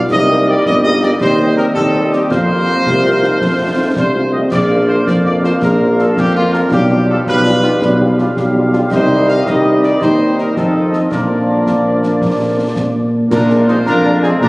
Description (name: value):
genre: military-style march for wind band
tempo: 109 BPM (dotted quarters)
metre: 6/8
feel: straight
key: Bb major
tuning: A4 = 440 Hz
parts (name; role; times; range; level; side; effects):
- mellow euphonium; second line; 0.0-14.5 s; Ab3 to G4; -22 LUFS; equal; none
- warm woodwind section; second line; 0.0-14.5 s; C4 to F5; -22 LUFS; equal; none
- clear trombone section; sustained chords; 0.0-14.5 s; D3 to F4; -22 LUFS; equal; none
- warm trumpet section; melody; 0.1-14.5 s; F4 to F5; -19 LUFS; equal; none
- warm tuba; bass; 0.1-14.5 s; G1 to Bb2; -14 LUFS; equal; none
- concert snare drum, clash cymbals and concert bass drum; drums; 0.1-14.5 s; none; -23 LUFS; equal; none
- mellow French horn section; accompaniment; 0.3-14.3 s; F3 to G4; -19 LUFS; left 1 dB; none
- bright piccolo; second line; 13.3-14.5 s; Ab5 to C6; -24 LUFS; left 1 dB; none
room: wet concert hall reverb, RT60 2.1 s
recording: recorded on a phone in the room, club ambience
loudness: -11 LUFS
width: side -23 dB against mid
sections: 0.0-13.3 A section; 13.3-14.5 B section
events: none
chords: 0.1 Cm7; 1.2 Cm/Eb; 2.3 Fsus4; 3.4 F; 4.5 Bb; 6.7 G7/B; 8.9 Cm; 10.0 Cm/Eb; 10.6 F7; 11.1 Bb; 13.3 Bb7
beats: | 0.11 0.66 | 1.21 1.76 | 2.31 2.86 | 3.41 3.96 | 4.51 5.07 | 5.62 6.17 | 6.72 7.27 | 7.82 8.37 | 8.92 9.46 | 10.02 10.56 | 11.11 11.66 | 12.21 12.76 | 13.31 13.86 | 14.41